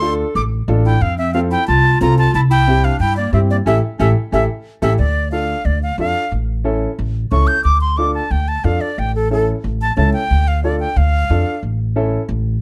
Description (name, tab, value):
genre	latin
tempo	181 BPM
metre	4/4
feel	straight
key	D harmonic minor from 5.0 s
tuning	A4 = 440 Hz
part	breathy bright concert flute	melody	0.0-11.6 s	A4 to G6	-21 LUFS	equal	none
part	breathy clarinet	second line	0.0-4.9 s	Bb3 to A4	-26 LUFS	equal	none
part	warm upright piano	accompaniment	0.0-12.2 s	C4 to A4	-24 LUFS	equal	none
part	upright bass	bass	0.0-12.6 s	A1 to G2	-19 LUFS	equal	none
room	light reverb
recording	dark, warm production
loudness	-17 LUFS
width	mono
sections	0.0-5.0 A section; 5.0-12.6 B section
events	band accent 3.7-5.0; flute solo 5.0-12.6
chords	0.0 Dm; 1.0 F; 2.3 C; 3.7 A7(no3); 5.0 Dm; 6.3 A; 7.7 Dm; 9.0 A; 10.3 Dm; 11.6 A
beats	0.02 0.35 0.68 | 1.02 1.35 1.68 2.01 | 2.34 2.67 3.00 3.34 | 3.67 4.00 4.33 4.66 | 5.00 5.33 5.66 5.99 | 6.32 6.65 6.99 7.32 | 7.65 7.98 8.31 8.64 | 8.98 9.31 9.64 9.97 | 10.30 10.63 10.97 11.30 | 11.63 11.96 12.29